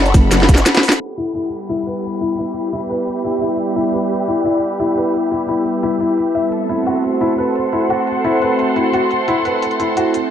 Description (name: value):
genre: dark technical drum and bass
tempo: 174 BPM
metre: 4/4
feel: straight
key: E minor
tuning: A4 = 440 Hz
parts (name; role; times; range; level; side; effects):
- growl bass; bass; 0.0-0.6 s; F#1; -14 LUFS; equal; chorus, tube saturation
- clear studio string section; texture; 0.0-10.3 s; G4 to C6; -22 LUFS; right 2 dB; sidechain pumping
- drum and bass drum kit; drums; 0.1-10.2 s; cabasa, hi-hat, snare drum; -15 LUFS; equal; none
- electronic kick drum; drums; 0.1-0.6 s; none; -11 LUFS; equal; none
- jungle sampler-style drum kit; drums; 0.1-1.0 s; ride cymbal, snare drum; -22 LUFS; equal; none
- sweeping resonant pad; sustained chords; 1.0-10.3 s; G3 to C5; -19 LUFS; equal; chorus, phaser, sidechain pumping
- downlifter; sound effects; 1.1-3.8 s; none; -44 LUFS; equal; none
- felt-muted upright piano; arpeggios; 1.2-10.1 s; E4 to E5; -20 LUFS; left 3 dB; sidechain pumping, low-pass filter, dub echo
room: moderate plate reverb, RT60 1.9 s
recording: dark, warm production, low-pass filter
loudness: -15 LUFS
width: side -9 dB against mid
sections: 0.0-1.0 A section; 1.0-10.3 B section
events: drop 0.0-1.0; drum fill 0.3-1.0; band accent 0.9; filter sweep on felt piano 1.0-10.3; filter sweep 1.0-10.3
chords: 0.0 F#m; 1.0 Em; 6.5 F#dim